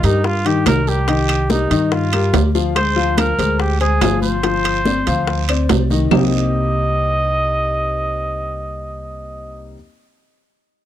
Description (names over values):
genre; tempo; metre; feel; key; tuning
Afro-Cuban jazz; 143 BPM; 4/4; straight; C minor; A4 = 439 Hz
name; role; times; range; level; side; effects
mellow trumpet; melody; 0.0-9.7 s; Eb4 to Eb5; -21 LUFS; right 1 dB; none
warm upright piano; accompaniment; 0.0-9.7 s; C3 to F5; -21 LUFS; left 6 dB; none
upright bass; bass; 0.0-9.7 s; G1 to G2; -20 LUFS; right 1 dB; none
congas; percussion; 0.0-6.2 s; none; -24 LUFS; equal; none
guiro; percussion; 0.0-6.2 s; none; -32 LUFS; right 18 dB; none
timbales; percussion; 0.0-6.2 s; none; -22 LUFS; right 10 dB; none
bongos; percussion; 0.2-6.2 s; none; -24 LUFS; left 8 dB; none
claves; percussion; 0.7-6.2 s; none; -28 LUFS; left 16 dB; none
room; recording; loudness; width
little or no reverb; dry, close 1970s-style studio recording; -15 LUFS; side -11 dB against mid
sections
0.0-2.8 A section; 2.8-6.1 B section; 6.1-9.5 C section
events
none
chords
0.0 Cm7; 2.8 Dm7b5; 4.4 G7sus4; 6.1 Cm7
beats
0.24 0.66 | 1.08 1.50 1.92 2.34 | 2.76 3.18 3.60 4.02 | 4.44 4.86 5.28 5.69 | 6.11 6.53 6.95 7.37 | 7.79 8.21 8.63 9.05